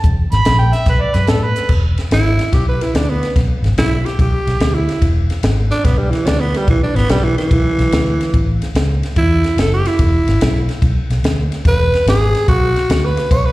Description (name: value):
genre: electric blues shuffle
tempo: 145 BPM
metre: 4/4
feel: swing 67% on 8ths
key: unclear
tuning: A4 = 440 Hz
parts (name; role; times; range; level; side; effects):
- overdriven harmonica; second line; 0.0-1.7 s; A4 to B5; -18 LUFS; right 2 dB; slapback echo
- vintage muted fingered electric bass; bass; 0.0-13.5 s; E1 to A2; -16 LUFS; equal; none
- compact cocktail drum kit; drums; 0.0-13.4 s; crash cymbal, hi-hat, kick drum, ride cymbal, snare drum; -18 LUFS; equal; slapback echo
- growling tenor saxophone; melody; 2.1-13.5 s; E3 to C#5; -17 LUFS; right 1 dB; slapback echo
room: little or no reverb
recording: live gig heard through the venue's PA, recital hall reverb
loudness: -13 LUFS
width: side -18 dB against mid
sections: 0.0-1.7 A section; 1.7-13.5 A section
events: harmonica solo 0.0-1.7; tenor saxophone solo 1.7-13.5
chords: 0.0 E; 0.9 B5; 1.7 E; 8.3 A; 10.0 E